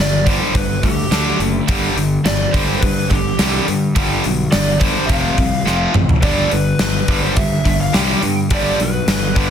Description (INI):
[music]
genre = hard rock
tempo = 106 BPM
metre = 4/4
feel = straight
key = G mixolydian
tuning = A4 = 441 Hz
[part]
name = lead guitar through a small cranked amp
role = melody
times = 0.0-9.5 s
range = G4 to G5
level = -22 LUFS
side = equal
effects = overdrive, slapback echo
[part]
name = tight distorted guitar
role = riff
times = 0.0-9.5 s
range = F2 to D4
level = -21 LUFS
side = left 10 dB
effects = distortion
[part]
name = tight distorted guitar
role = riff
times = 0.0-9.5 s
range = F2 to D4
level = -22 LUFS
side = right 11 dB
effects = distortion
[part]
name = fuzz fingered electric bass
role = bass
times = 0.0-9.5 s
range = F1 to G2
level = -21 LUFS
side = equal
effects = overdrive
[part]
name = gated 80s drum kit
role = drums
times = 0.3-9.5 s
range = hi-hat, kick drum, snare drum, toms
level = -18 LUFS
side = equal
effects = none
[sound]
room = light reverb, studio ambience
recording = dense, heavily limited modern master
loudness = -14 LUFS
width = side -8 dB against mid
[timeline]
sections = 0.0-9.5 A section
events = drum fill 5.7-6.2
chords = 0.0 G; 1.1 D5; 1.7 G5; 5.1 F5; 6.2 G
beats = 0.55 1.12 | 1.69 2.26 2.82 3.39 | 3.96 4.53 5.10 5.67 | 6.23 6.80 7.37 7.94 | 8.51 9.08